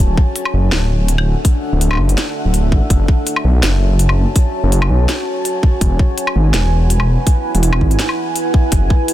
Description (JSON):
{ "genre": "half-time drum and bass", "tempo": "165 BPM", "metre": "4/4", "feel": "swing 53% on 16ths, half-time", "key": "unclear", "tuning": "A4 = 440 Hz", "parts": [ { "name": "deep dark ambient pad", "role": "sustained chords", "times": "0.0-9.1 s", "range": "D4 to A5", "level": "-21 LUFS", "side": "equal", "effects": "chorus, built-in reverb, sidechain pumping" }, { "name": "dark detuned saw bass", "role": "bass", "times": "0.0-8.9 s", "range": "D1 to B1", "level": "-14 LUFS", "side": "equal", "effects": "none" }, { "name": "electronic kick drum", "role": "drums", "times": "0.2-9.0 s", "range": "none", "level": "-13 LUFS", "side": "equal", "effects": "none" }, { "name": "drum and bass drum kit", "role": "drums", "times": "0.4-9.1 s", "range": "hi-hat, snare drum, woodblock", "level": "-22 LUFS", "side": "left 1 dB", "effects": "none" } ], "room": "little or no reverb", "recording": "dense, heavily limited modern master", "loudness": "-12 LUFS", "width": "side -14 dB against mid", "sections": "0.0-9.1 A section", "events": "none", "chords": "0.0 D; 2.9 F#m; 5.8 E" }